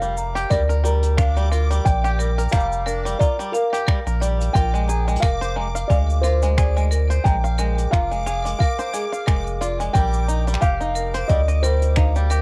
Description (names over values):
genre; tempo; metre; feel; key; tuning
folktronica; 89 BPM; 4/4; swing 56% on 16ths; Bb mixolydian; A4 = 439 Hz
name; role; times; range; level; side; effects
felt-muted upright piano; melody; 0.0-12.3 s; Bb4 to G5; -28 LUFS; equal; cassette tape, plate reverb, tape echo
marimba with hard mallets; second line; 0.0-12.4 s; Ab4 to Bb5; -31 LUFS; equal; cassette tape, plate reverb, tape echo
bluegrass banjo; arpeggios; 0.0-12.4 s; G3 to F5; -31 LUFS; equal; vintage 12-bit sampler grit, cassette tape, plate reverb, tape echo
warm sub bass; bass; 0.0-12.4 s; F1 to D2; -23 LUFS; equal; none
soft brush drum kit; drums; 0.0-12.4 s; cabasa, finger snaps, hi-hat; -35 LUFS; equal; cassette tape
backwards swelling texture; texture; 0.3-12.4 s; D6; -39 LUFS; equal; built-in reverb, cassette tape, plate reverb
electronic kick drum; drums; 0.5-12.1 s; none; -22 LUFS; equal; cassette tape
room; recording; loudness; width
light reverb; home recording on cassette; -20 LUFS; mono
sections
0.0-12.4 A section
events
none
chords
0.0 Bb6; 4.6 Fm; 9.9 Cm